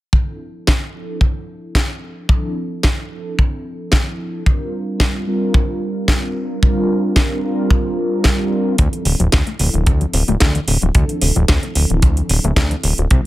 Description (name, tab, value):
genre	nu-disco, nu disco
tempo	111 BPM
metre	4/4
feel	swing 54% on 16ths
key	D minor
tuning	A4 = 440 Hz
part	mellow synth brass	accompaniment	0.1-13.3 s	F3 to Bb4	-22 LUFS	right 1 dB	chorus, sidechain pumping, digital delay
part	kick drum	drums	0.1-13.2 s	none	-15 LUFS	equal	none
part	house drum kit	drums	0.7-13.2 s	hi-hat, snare drum	-20 LUFS	equal	none
part	analog pluck	arpeggios	8.8-13.1 s	C3 to A3	-25 LUFS	left 4 dB	chorus, sidechain pumping, digital delay
part	fat analog bass	bass	8.8-13.2 s	D1 to D2	-16 LUFS	equal	none
room	small room reverb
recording	none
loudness	-15 LUFS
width	side -16 dB against mid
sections	0.1-8.8 A section; 8.8-13.3 B section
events	filter sweep on analog polysynth 0.1-8.8, 8.8-13.3; filter sweep on synth arpeggio sound 8.8-13.3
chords	0.1 Dm9; 4.5 C9sus4; 8.8 Dm9